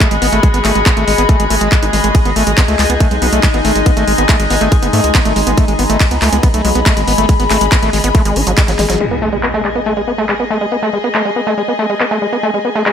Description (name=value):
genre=psychedelic trance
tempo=140 BPM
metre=4/4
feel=straight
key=G# phrygian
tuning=A4 = 440 Hz
part: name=overtone-sweeping drone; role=sustained chords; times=0.0-12.9 s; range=G#3 to G#4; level=-21 LUFS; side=equal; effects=chorus, built-in reverb, sidechain pumping
part: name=overdriven acid bass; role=riff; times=0.0-12.9 s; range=F#3 to D#4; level=-17 LUFS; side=equal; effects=distortion, auto-pan, sidechain pumping, tape echo
part: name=big-room dance drum kit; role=drums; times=0.0-12.9 s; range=crash cymbal, handclaps, hi-hat, ride cymbal, snare drum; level=-18 LUFS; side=equal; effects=overdrive, low-pass filter on hats, low-pass filter on snare, low-pass filter on cymbals
part: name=electronic kick drum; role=drums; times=0.0-8.7 s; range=none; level=-11 LUFS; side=equal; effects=none
part: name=dark studio string section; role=texture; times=0.0-12.9 s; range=G#4 to B5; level=-18 LUFS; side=left 4 dB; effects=sidechain pumping
part: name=round analog bass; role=bass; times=0.1-9.0 s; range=F#1 to G#2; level=-17 LUFS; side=equal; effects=none
part: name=resonant blip pluck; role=second line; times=0.6-7.7 s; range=D#3 to B3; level=-29 LUFS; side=equal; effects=none
part: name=impact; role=sound effects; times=9.0-10.7 s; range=none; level=-25 LUFS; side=equal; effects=none
room=light reverb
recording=none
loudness=-11 LUFS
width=side -8 dB against mid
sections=0.0-9.0 A section; 9.0-12.9 B section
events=drop 0.0-9.0; drum fill 8.7-9.0; impact 9.0-10.7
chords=0.0 G#5